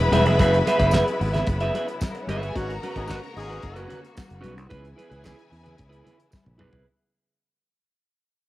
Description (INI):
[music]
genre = disco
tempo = 111 BPM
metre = 4/4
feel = straight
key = C# dorian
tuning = A4 = 439 Hz
[part]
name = rich studio string section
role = second line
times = 0.0-6.6 s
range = A#3 to B5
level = -30 LUFS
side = left 2 dB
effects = cassette tape
[part]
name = clean electric guitar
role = accompaniment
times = 0.0-6.9 s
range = C#4 to E5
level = -25 LUFS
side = right 2 dB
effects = cassette tape
[part]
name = bright studio string section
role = sustained chords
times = 0.0-6.8 s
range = C#3 to F#4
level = -30 LUFS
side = left 1 dB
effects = cassette tape
[part]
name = fingered electric bass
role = bass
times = 0.0-6.8 s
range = E1 to E2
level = -25 LUFS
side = equal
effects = none
[part]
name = damped 70s drum kit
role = drums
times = 0.1-6.9 s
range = handclaps, hi-hat, kick drum, snare drum, toms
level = -26 LUFS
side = equal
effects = cassette tape
[part]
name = congas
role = percussion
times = 0.1-6.7 s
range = none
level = -32 LUFS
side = left 3 dB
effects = none
[part]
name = tambourine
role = percussion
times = 0.9-6.4 s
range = none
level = -45 LUFS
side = right 5 dB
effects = none
[part]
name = clear horn section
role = stabs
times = 2.5-3.9 s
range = C#4 to B4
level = -40 LUFS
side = left 3 dB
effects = cassette tape
[sound]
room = light reverb, studio ambience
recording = home recording on cassette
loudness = -20 LUFS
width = side -16 dB against mid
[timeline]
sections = 0.0-6.9 A section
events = fade-out 0.0-6.9; drum fill 6.3-6.9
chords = 0.0 F#9sus4; 2.6 G#m11; 4.7 C#m7